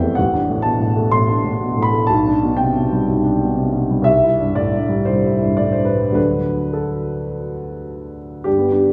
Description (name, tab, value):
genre	classical, romantic character piece for solo piano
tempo	101-128 BPM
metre	4/4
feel	rubato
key	unclear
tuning	A4 = 440 Hz
part	warm grand piano	solo	0.0-8.9 s	A1 to C6	-18 LUFS	equal	none
room	wet recital hall reverb, RT60 1.6 s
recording	heard from further back in the room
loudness	-18 LUFS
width	mono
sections	0.0-8.5 A section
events	none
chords	0.2 D7/A; 2.1 G/B; 4.1 Am7/C; 6.2 D